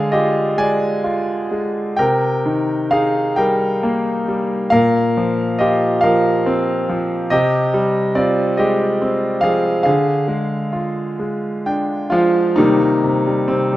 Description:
classical, lyrical solo piano; 42-47 BPM (dotted quarters); 6/8; rubato; C minor; A4 = 441 Hz
bright concert grand piano; solo; 0.0-13.8 s; Bb2 to Ab5; -15 LUFS; equal
moderate recital hall reverb, RT60 1.5 s; dark, warm production; -15 LUFS; side -15 dB against mid
0.0-12.6 A section; 12.6-13.8 B section
grand piano fill 11.2-12.6
0.0 Ddim; 2.0 Cm7; 4.7 Bbsus2; 7.3 Fmadd9/C; 9.9 Ddim; 12.6 Cm7

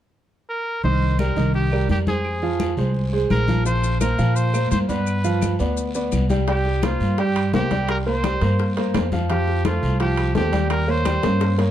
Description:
latin, salsa; 170 BPM; 4/4; straight; C minor; A4 = 438 Hz
bright trumpet; melody; 0.5-11.6 s; F4 to C5; -26 LUFS; equal
bright grand piano; accompaniment; 0.8-11.7 s; Eb3 to G5; -24 LUFS; right 1 dB
upright bass; bass; 0.8-11.7 s; Bb1 to Bb2; -21 LUFS; equal
congas; percussion; 0.8-11.7 s; -28 LUFS; left 4 dB
guiro; percussion; 0.8-11.7 s; -40 LUFS; left 2 dB
claves; percussion; 1.2-11.2 s; -40 LUFS; right 4 dB
maracas; percussion; 3.7-6.5 s; -36 LUFS; left 9 dB
bongos; percussion; 6.5-11.7 s; -32 LUFS; left 9 dB
timbales; percussion; 6.5-11.7 s; -33 LUFS; right 6 dB
little or no reverb; dark, warm production; -18 LUFS; side -11 dB against mid
0.8-6.5 A section; 6.5-11.7 B section
drum fill 11.2-11.7
0.0 N.C.; 0.8 Cm7; 2.2 Fm; 3.7 Bbadd9; 5.1 G7; 6.5 C5; 9.3 F; 10.7 Eb7

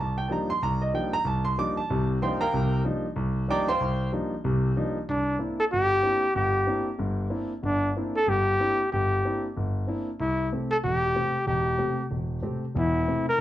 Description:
jazz; 188 BPM; 4/4; swing 62% on 8ths; F mixolydian, C mixolydian from 5.1 s; A4 = 435 Hz
warm concert grand piano; accompaniment; 0.0-13.4 s; E1 to D6; -26 LUFS; equal
warm trumpet; melody; 5.1-13.4 s; D4 to Bb4; -24 LUFS; left 1 dB; plate reverb
moderate club reverb, RT60 0.6 s; dark, warm production; -24 LUFS; side -13 dB against mid
0.0-5.1 A section; 5.1-13.4 B section
0.0 F13sus4; 5.1 C9; 10.2 Am7

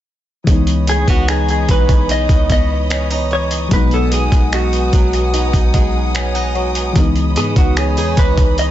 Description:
contemporary R&B; 74 BPM; 4/4; straight; C# minor; A4 = 439 Hz
mellow FM electric piano; accompaniment; 0.4-8.7 s; E3 to G#5; -22 LUFS; left 5 dB; chorus
warm studio string section; sustained chords; 0.5-8.7 s; B4 to D#6; -26 LUFS; equal; sidechain pumping
picked acoustic archtop guitar; arpeggios; 0.5-8.7 s; B2 to D#4; -24 LUFS; right 6 dB; analog delay
clean 808-style bass; bass; 0.5-8.7 s; B1 to G#2; -18 LUFS; equal
dusty soul sampler-style drum kit; drums; 0.5-8.7 s; finger snaps, hi-hat, kick drum; -16 LUFS; equal
direct-recorded clean electric guitar; melody; 0.9-8.7 s; F#4 to D#5; -20 LUFS; equal; lush chorus, analog delay
little or no reverb; echo-heavy mix, nothing above 7.8 kHz; -12 LUFS; side -12 dB against mid
0.5-8.7 A section
FM electric piano fill 5.7-7.0
0.5 C#m9; 3.7 G#m7/B; 7.0 C#m9

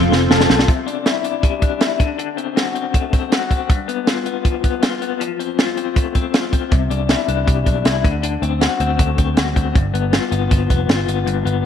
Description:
jangly indie pop; 158 BPM; 4/4; straight; C major; A4 = 440 Hz
picked steel-string acoustic guitar; accompaniment; 0.0-0.7 s; F3 to A4; -21 LUFS; right 13 dB
hollow soft pad; sustained chords; 0.0-0.7 s; A4 to C6; -28 LUFS; left 1 dB; ensemble chorus
electric guitar through a small old amp; arpeggios; 0.0-11.7 s; G2 to A4; -20 LUFS; left 12 dB; tremolo
vintage muted picked electric bass; bass; 0.0-0.6, 6.7-11.7 s; F1 to D2; -20 LUFS; right 1 dB
compact cocktail drum kit; drums; 0.1-11.6 s; hi-hat, kick drum, snare drum; -17 LUFS; right 1 dB
light reverb, small room ambience; 1960s-style stereo with parts hard left and right; -15 LUFS; side -8 dB against mid
0.7-11.7 A section
drum fill 0.0-0.7
0.0 F; 0.7 Cadd9; 2.0 D7; 3.7 G7; 5.2 F; 6.7 Cadd9; 8.0 D7; 9.8 G7

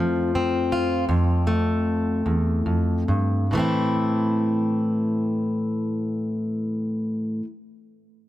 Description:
folk; 45-56 BPM (dotted quarters); 6/8; straight; A minor; A4 = 440 Hz
fingerpicked plugged-in steel-string acoustic guitar; accompaniment; 0.0-7.5 s; E2 to F4; -21 LUFS; equal
light reverb, small room ambience; -21 LUFS; side -14 dB against mid
0.0-3.5 A section; 3.5-8.3 B section
slowing down 0.0-3.5
0.0 F; 3.5 Am

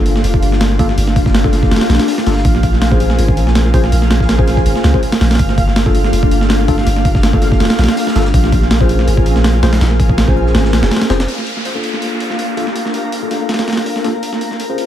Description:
drum and bass, jungle; 163 BPM; 4/4; swing 53% on 16ths; A4 = 437 Hz
ethereal airy pad; sustained chords; 0.0-14.9 s; Bb3 to Ab5; -20 LUFS; left 1 dB; ensemble chorus, built-in reverb
mellow tine electric piano; stabs; 0.0-14.9 s; Bb3 to C5; -21 LUFS; left 3 dB; overdrive, fast stereo tremolo, low-pass filter, dub echo
long sustained 808-style bass; bass; 0.0-11.3 s; F1 to Db2; -14 LUFS; equal
backwards swelling texture; texture; 1.0-14.9 s; Bb4 to F5; -27 LUFS; right 1 dB; built-in reverb
breakbeat sampler-style drum kit; drums; 0.1-14.9 s; hi-hat, kick drum, snare drum; -15 LUFS; right 1 dB; overdrive, high-pass filter on hats, high-pass filter on snare, high-pass filter on kick, high-pass filter on room
crunchy breakbeat drum kit; drums; 0.1-11.3 s; hi-hat, shaker, snare drum; -34 LUFS; left 1 dB
downlifter; sound effects; 11.3-14.2 s; -26 LUFS; equal
small room ambience; -11 LUFS; side -11 dB against mid
0.0-11.3 A section; 11.3-14.9 B section
drop 0.0-11.3
0.0 Gm7; 2.5 Bbm7; 5.4 Gm7; 8.3 Bbm7; 11.3 Gm7; 14.2 Bbm7

